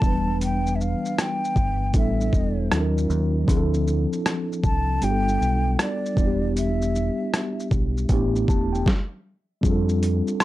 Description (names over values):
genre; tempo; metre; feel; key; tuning
lo-fi hip hop; 78 BPM; 4/4; swing 66% on 16ths; unclear; A4 = 440 Hz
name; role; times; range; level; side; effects
mellow hollow concert flute; melody; 0.0-10.4 s; D5 to A5; -28 LUFS; left 2 dB; none
mellow tine electric piano; accompaniment; 0.0-10.4 s; E3 to A5; -25 LUFS; equal; medium stereo tremolo, cassette tape
deep dub fingered electric bass; bass; 0.0-10.2 s; E1 to F2; -24 LUFS; equal; none
boom bap sampler-style drum kit; drums; 0.0-10.4 s; hi-hat, kick drum, rim click, shaker, snare drum; -23 LUFS; equal; overdrive
room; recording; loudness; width
moderate small room reverb, RT60 0.6 s; cassette tape; -20 LUFS; side -15 dB against mid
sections
0.0-9.6 A section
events
tine electric piano fill 8.1-9.6; stop 8.9-9.6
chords
0.0 Em7; 1.9 A7sus4; 2.7 Ebm9; 3.5 Dm9; 5.0 G7; 6.2 Em7; 8.1 A7sus4; 8.9 N.C.; 9.6 F69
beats
| 0.40 1.17 1.94 2.71 | 3.48 4.25 5.02 5.79 | 6.55 7.32 8.09 8.86 | 9.63 10.40